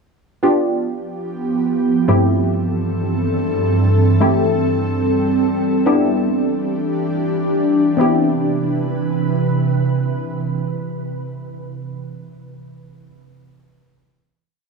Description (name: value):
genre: dance-pop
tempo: free time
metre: none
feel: none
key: C major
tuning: A4 = 440 Hz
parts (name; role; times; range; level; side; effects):
- wavetable chord stab; accompaniment; 0.4-11.2 s; G2 to G4; -18 LUFS; left 1 dB; none
- ethereal airy pad; sustained chords; 1.2-11.1 s; G2 to B4; -17 LUFS; right 1 dB; ensemble chorus, built-in reverb
room: moderate plate reverb, RT60 3.4 s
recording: none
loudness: -16 LUFS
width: side -4 dB against mid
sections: 0.4-8.0 breakdown; 8.0-11.8 final chord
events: none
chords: 0.4 G7; 2.1 C6/G; 5.9 Em7; 8.0 Cmaj7